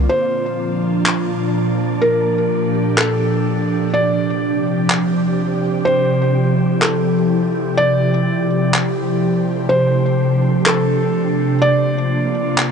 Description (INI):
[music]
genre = hip hop, atmospheric cloud-rap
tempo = 125 BPM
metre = 4/4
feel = half-time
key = Bb lydian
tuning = A4 = 440 Hz
[part]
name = felt-muted upright piano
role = melody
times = 0.0-12.7 s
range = A4 to D5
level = -20 LUFS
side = equal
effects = ping-pong delay
[part]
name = ethereal airy pad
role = sustained chords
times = 0.0-12.7 s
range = Bb2 to G4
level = -17 LUFS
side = right 1 dB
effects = ensemble chorus, built-in reverb
[part]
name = wind-like tuned noise texture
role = texture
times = 0.0-12.7 s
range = A3 to A5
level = -28 LUFS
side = left 1 dB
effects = built-in reverb
[part]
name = handclaps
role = drums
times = 1.1-12.7 s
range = none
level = -19 LUFS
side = equal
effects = vintage 12-bit sampler grit
[sound]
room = light reverb, studio reverb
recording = nothing above 10.3 kHz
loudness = -15 LUFS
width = side -6 dB against mid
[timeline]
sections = 0.1-12.7 A section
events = break 0.1-7.8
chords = 0.1 Bbmaj7; 3.9 D7sus4; 11.6 C9sus4